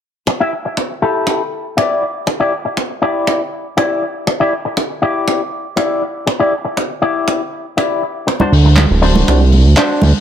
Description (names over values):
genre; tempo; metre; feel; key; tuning
nu-disco, nu disco; 120 BPM; 4/4; straight; E minor; A4 = 439 Hz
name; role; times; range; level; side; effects
electric guitar with an envelope filter; riff; 0.3-10.0 s; D4 to E5; -16 LUFS; left 2 dB; lush chorus, low-pass filter, analog delay
kick drum; drums; 0.3-9.9 s; none; -20 LUFS; right 1 dB; high-pass filter on kick, high-pass filter on snare, high-pass filter on room
congas; percussion; 8.4-10.1 s; none; -18 LUFS; right 3 dB; analog delay
fat analog bass; bass; 8.5-10.1 s; D1 to D2; -9 LUFS; right 1 dB; none
tight funk drum kit; drums; 8.5-10.1 s; handclaps, hi-hat; -20 LUFS; left 1 dB; low-pass filter on hats, low-pass filter on snare, low-pass filter on room
room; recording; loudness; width
light reverb; echo-heavy mix; -13 LUFS; side -9 dB against mid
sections
0.3-10.2 A section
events
none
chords
0.3 Em7; 8.3 D7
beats
| 0.27 0.77 1.27 1.77 | 2.27 2.77 3.27 3.77 | 4.27 4.77 5.27 5.77 | 6.27 6.77 7.27 7.77 | 8.27 8.77 9.27 9.77